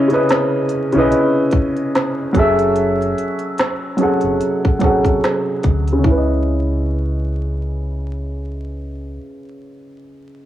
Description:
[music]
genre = lo-fi hip hop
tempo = 73 BPM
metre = 4/4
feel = swing 57% on 16ths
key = C# minor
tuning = A4 = 440 Hz
[part]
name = warm upright piano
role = accompaniment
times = 0.0-10.5 s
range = C#3 to F#5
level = -17 LUFS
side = equal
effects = low-pass filter, cassette tape
[part]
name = organic electronic drum kit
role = drums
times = 0.1-6.3 s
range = finger snaps, hi-hat, kick drum, snare drum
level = -19 LUFS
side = equal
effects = overdrive, cassette tape
[part]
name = deep dub fingered electric bass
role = bass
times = 1.0-9.2 s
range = F#1 to D2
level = -21 LUFS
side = equal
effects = none
[sound]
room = light reverb, digital ambience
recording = home recording on cassette, vinyl crackle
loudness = -15 LUFS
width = side -12 dB against mid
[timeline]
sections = 0.0-6.0 A section; 6.0-9.3 B section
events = filter sweep on upright piano 0.0-6.0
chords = 0.0 C#m7; 2.3 F#m7; 6.0 C#m7

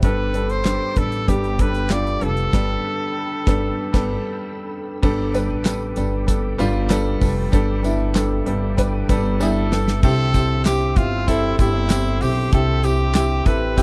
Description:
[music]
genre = piano-driven pop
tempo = 96 BPM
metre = 4/4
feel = straight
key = unclear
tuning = A4 = 440 Hz
[part]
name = clear trumpet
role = melody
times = 0.0-4.4, 9.4-13.8 s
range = E4 to D5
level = -27 LUFS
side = equal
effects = slapback echo
[part]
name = warm upright piano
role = accompaniment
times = 0.0-13.8 s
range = G2 to C5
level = -25 LUFS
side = equal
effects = none
[part]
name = mellow tonewheel organ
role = sustained chords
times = 0.0-13.8 s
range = G4 to E6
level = -39 LUFS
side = equal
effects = none
[part]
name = upright bass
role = bass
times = 0.0-13.8 s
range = F1 to C2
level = -25 LUFS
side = equal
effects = none
[part]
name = damped 70s drum kit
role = drums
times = 0.0-13.8 s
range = crash cymbal, handclaps, hi-hat, kick drum, snare drum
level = -21 LUFS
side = equal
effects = none
[part]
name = tambourine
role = percussion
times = 5.3-13.8 s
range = none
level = -42 LUFS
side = equal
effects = none
[sound]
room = light reverb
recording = dry, close 1970s-style studio recording, lossy compression artefacts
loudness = -20 LUFS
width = mono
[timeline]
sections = 0.0-5.0 A section; 5.0-10.0 B section; 10.0-13.8 C section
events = band accent 2.5-5.0; drum fill 9.4-10.0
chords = 0.0 Gadd9; 10.0 C

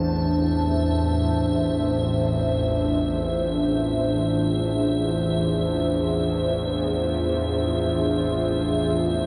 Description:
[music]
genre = dark ambient drone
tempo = free time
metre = none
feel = none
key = unclear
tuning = A4 = 440 Hz
[part]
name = dark analog pad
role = sustained chords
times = 0.0-9.3 s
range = D4 to C5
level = -26 LUFS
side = equal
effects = chorus, phaser
[part]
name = bowed-like drone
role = drone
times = 0.0-9.3 s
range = A1 to E2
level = -27 LUFS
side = equal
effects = built-in reverb
[part]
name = icy glass pad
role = texture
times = 0.0-9.3 s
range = E5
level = -33 LUFS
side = equal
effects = chorus, built-in reverb
[sound]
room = wet huge ambient reverb, RT60 7.5 s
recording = none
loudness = -23 LUFS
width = mono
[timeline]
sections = 0.0-9.3 A section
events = filter sweep on synth drone 0.0-9.3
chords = 0.0 Fm

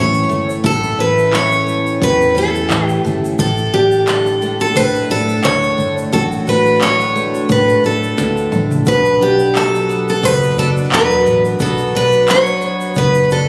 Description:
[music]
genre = acoustic pop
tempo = 88 BPM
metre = 4/4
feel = swing 55% on 16ths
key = D major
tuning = A4 = 438 Hz
[part]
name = picked steel-string acoustic guitar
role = melody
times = 0.0-13.5 s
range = G4 to C#5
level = -16 LUFS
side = equal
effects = digital delay
[part]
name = picked twelve-string acoustic guitar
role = accompaniment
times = 0.0-13.5 s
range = A2 to F#4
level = -21 LUFS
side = equal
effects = none
[part]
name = vintage muted fingered electric bass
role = bass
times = 0.0-13.5 s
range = E1 to A2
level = -24 LUFS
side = equal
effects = none
[part]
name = egg shaker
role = percussion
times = 0.1-13.5 s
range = none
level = -40 LUFS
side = equal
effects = none
[part]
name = minimal click drum kit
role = drums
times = 0.6-13.1 s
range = handclaps, kick drum, snare drum, toms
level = -22 LUFS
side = equal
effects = none
[sound]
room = light reverb, small room ambience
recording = recorded on a phone in the room, club reverb, compression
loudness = -14 LUFS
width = mono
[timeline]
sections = 0.0-13.5 A section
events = drum fill 8.2-8.9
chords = 0.0 A; 3.4 D; 8.9 Bm

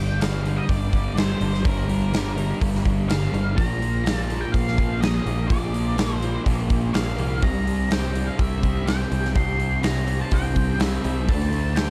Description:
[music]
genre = rock, shoegaze and dream pop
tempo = 125 BPM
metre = 4/4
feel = straight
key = G minor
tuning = A4 = 439 Hz
[part]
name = octave-fuzz lead guitar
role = melody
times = 0.0-11.9 s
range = Bb4 to C6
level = -34 LUFS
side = equal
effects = distortion, tape echo
[part]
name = thick fuzz guitar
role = riff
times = 0.0-11.9 s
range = G2 to D4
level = -29 LUFS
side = equal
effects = distortion, analog chorus
[part]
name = modern bright picked electric bass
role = bass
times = 0.0-11.9 s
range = G1 to D2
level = -28 LUFS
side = equal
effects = none
[part]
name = huge arena drum kit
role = drums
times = 0.2-11.9 s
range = hi-hat, kick drum, snare drum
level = -27 LUFS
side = equal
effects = none
[sound]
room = small room ambience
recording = dark, warm production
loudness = -23 LUFS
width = mono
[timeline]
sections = 0.0-11.9 A section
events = none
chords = 0.0 Gm7; 3.6 Bb; 7.4 C7; 11.3 D5

